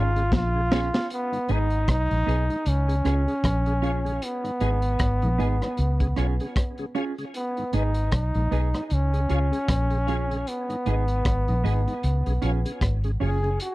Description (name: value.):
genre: roots reggae.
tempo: 77 BPM.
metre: 4/4.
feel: swing 58% on 16ths.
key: G# dorian.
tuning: A4 = 440 Hz.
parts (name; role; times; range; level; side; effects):
bright trombone; melody; 0.0-13.7 s; B3 to G#4; -28 LUFS; equal; tape echo.
mellow electric guitar; accompaniment; 0.0-13.4 s; B3 to G#4; -32 LUFS; right 6 dB; tape echo.
tonewheel organ; accompaniment; 0.0-13.5 s; G#2 to G#4; -36 LUFS; left 1 dB; chorus vibrato, slow rotary speaker, tape echo.
mellow electric guitar; riff; 0.0-0.6 s; G#2 to A#2; -30 LUFS; left 3 dB; none.
vintage muted fingered electric bass; bass; 0.0-13.6 s; F#1 to C#2; -24 LUFS; equal; none.
crunchy breakbeat drum kit; drums; 0.2-13.7 s; hi-hat, kick drum, rim click, snare drum; -27 LUFS; equal; none.
room: little or no reverb.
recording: dry, close 1970s-style studio recording.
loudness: -22 LUFS.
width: side -18 dB against mid.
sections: 0.0-1.1 A section; 1.1-13.7 B section.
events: trombone solo 0.0-1.1; drum fill 0.3-1.1.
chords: 0.0 C#; 1.1 G#m; 2.7 C#; 4.2 G#m; 5.8 C#; 7.3 G#m; 8.9 C#; 10.5 G#m; 12.0 C#.